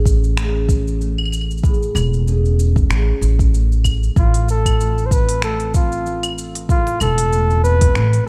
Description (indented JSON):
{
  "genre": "folktronica",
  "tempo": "95 BPM",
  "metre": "4/4",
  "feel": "swing 56% on 16ths",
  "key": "unclear",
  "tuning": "A4 = 438 Hz",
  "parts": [
    { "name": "concert harp", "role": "arpeggios", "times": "0.0-8.3 s", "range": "A2 to G#4", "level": "-29 LUFS", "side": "equal", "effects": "tape echo" },
    { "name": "upright bass", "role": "bass", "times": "0.0-8.2 s", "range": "E1 to A1", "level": "-20 LUFS", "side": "equal", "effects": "none" },
    { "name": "electronic kick drum", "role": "drums", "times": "0.1-7.9 s", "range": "none", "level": "-19 LUFS", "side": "equal", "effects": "none" },
    { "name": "organic electronic drum kit", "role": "drums", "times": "0.1-8.2 s", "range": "cabasa, claves, finger snaps, hi-hat", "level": "-29 LUFS", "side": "equal", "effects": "none" },
    { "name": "breathy flugelhorn", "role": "melody", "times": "4.2-8.3 s", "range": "F4 to C5", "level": "-23 LUFS", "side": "equal", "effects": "none" }
  ],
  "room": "small room ambience",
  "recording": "none",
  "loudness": "-17 LUFS",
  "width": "mono",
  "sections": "0.0-8.3 A section",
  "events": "none",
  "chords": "0.0 Amaj7; 4.2 F/A"
}